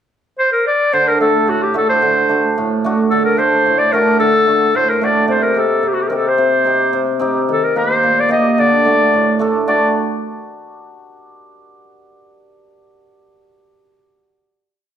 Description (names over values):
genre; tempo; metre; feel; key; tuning
klezmer; 110 BPM; 2/4; straight; D phrygian dominant; A4 = 440 Hz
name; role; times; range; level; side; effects
warm clarinet; melody; 0.4-9.9 s; F#4 to Eb5; -14 LUFS; left 1 dB; none
cimbalom; accompaniment; 0.9-9.9 s; A2 to A4; -17 LUFS; right 2 dB; none
room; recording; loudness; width
wet recital hall reverb, RT60 1.3 s; none; -12 LUFS; side -9 dB against mid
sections
0.0-0.9 pickup bar; 0.9-9.7 A section; 9.7-10.8 final chord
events
none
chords
0.0 N.C.; 0.9 D; 5.3 Cm; 7.5 Eb; 8.6 D